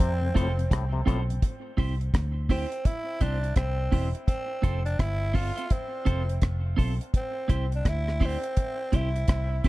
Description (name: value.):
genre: roots reggae.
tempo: 84 BPM.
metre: 4/4.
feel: swing 63% on 16ths.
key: C major.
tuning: A4 = 440 Hz.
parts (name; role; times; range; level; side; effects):
growling tenor saxophone; melody; 0.0-9.7 s; C4 to F4; -33 LUFS; right 1 dB; dub echo.
auto-wah clav; arpeggios; 0.0-1.2 s; A2 to C3; -37 LUFS; left 6 dB; none.
vintage muted fingered electric bass; bass; 0.0-9.7 s; E1 to F2; -28 LUFS; equal; none.
deep reggae drum kit; drums; 0.0-9.7 s; hi-hat, kick drum, rim click; -25 LUFS; equal; none.
mellow tonewheel organ; accompaniment; 0.2-1.4 s; F2 to C4; -38 LUFS; left 3 dB; chorus vibrato, slow rotary speaker, dub echo.
clean electric guitar; accompaniment; 0.3-9.7 s; C4 to C5; -34 LUFS; right 4 dB; dub echo.
room: little or no reverb.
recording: dark, warm production.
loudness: -24 LUFS.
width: side -18 dB against mid.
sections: 0.0-1.4 A section; 1.4-9.7 B section.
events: none.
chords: 0.0 F; 1.4 C; 4.3 F; 7.1 C.